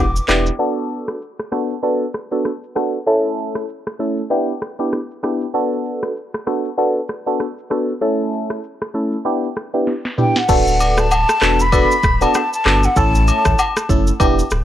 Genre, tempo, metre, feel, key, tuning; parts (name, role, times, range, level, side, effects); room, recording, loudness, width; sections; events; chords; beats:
afrobeats; 97 BPM; 4/4; swing 58% on 16ths; D major; A4 = 440 Hz
breathy mellow jazz flute; melody; 0.0-0.3, 10.2-13.9 s; F#5 to D6; -18 LUFS; left 1 dB
barking FM electric piano; accompaniment; 0.0-14.4 s; A3 to A4; -19 LUFS; equal; phaser
warm sub bass; bass; 0.0-0.5, 10.5-14.6 s; D1 to A1; -18 LUFS; equal
afro-pop drum kit; drums; 0.2-14.6 s; crash cymbal, handclaps, kick drum, rim click, shaker, snare drum, toms; -20 LUFS; equal
agogo bells and woodblock; percussion; 0.3-0.5, 10.8-14.4 s; -23 LUFS; left 2 dB
little or no reverb; dry, gritty hardware recording, cassette tape, low-pass filter; -16 LUFS; side -11 dB against mid
0.6-10.5 A section; 10.5-14.6 B section
filter sweep 0.6-10.5; drum fill 9.9-10.5
0.0 Em7; 0.6 D6; 3.1 A; 4.3 Em7; 5.5 D6; 8.0 A; 9.3 Em7; 10.5 D6; 13.0 A
| 0.59 1.21 1.83 2.45 | 3.07 3.69 4.30 4.92 | 5.54 6.16 6.78 7.40 | 8.02 8.63 9.25 9.87 | 10.49 11.11 11.73 12.35 | 12.96 13.58 14.20